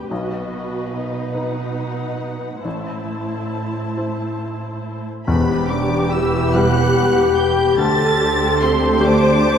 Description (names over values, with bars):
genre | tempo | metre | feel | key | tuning
cinematic, emotional film score for orchestra | 47 BPM (dotted quarters) | 6/8 | uneven beats, rubato | E minor | A4 = 440 Hz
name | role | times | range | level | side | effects
warm symphonic violin section | melody | 0.0-9.6 s | D#5 to A6 | -27 LUFS | left 2 dB | none
warm symphonic violin section | second line | 0.0-9.6 s | B3 to C5 | -28 LUFS | left 4 dB | none
felt-muted upright piano | accompaniment | 0.0-9.6 s | A1 to C5 | -25 LUFS | left 2 dB | none
warm symphonic viola section | accompaniment | 0.0-9.6 s | D#4 to C5 | -25 LUFS | right 2 dB | none
warm symphonic cello section | bass | 0.0-9.6 s | D2 to B2 | -25 LUFS | right 3 dB | none
flute section | second line | 5.3-9.6 s | B4 to A5 | -26 LUFS | left 1 dB | none
mellow cor anglais | second line | 5.3-9.6 s | B4 to C5 | -27 LUFS | right 1 dB | none
warm clarinet | second line | 5.3-9.6 s | G4 | -27 LUFS | equal | none
dark French horn section | sustained chords | 5.3-9.6 s | B3 to A4 | -21 LUFS | left 4 dB | none
warm symphonic double bass section | bass | 5.3-9.6 s | E1 to D2 | -23 LUFS | right 4 dB | none
timpani | percussion | 5.3-6.5 s | E2 | -26 LUFS | equal | none
room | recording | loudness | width
wet scoring stage reverb, RT60 1.6 s | none | -16 LUFS | side -8 dB against mid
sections
0.0-5.3 A section; 5.3-9.6 B section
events
none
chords
0.1 B; 2.6 Am; 5.3 Emadd9; 7.8 D7sus4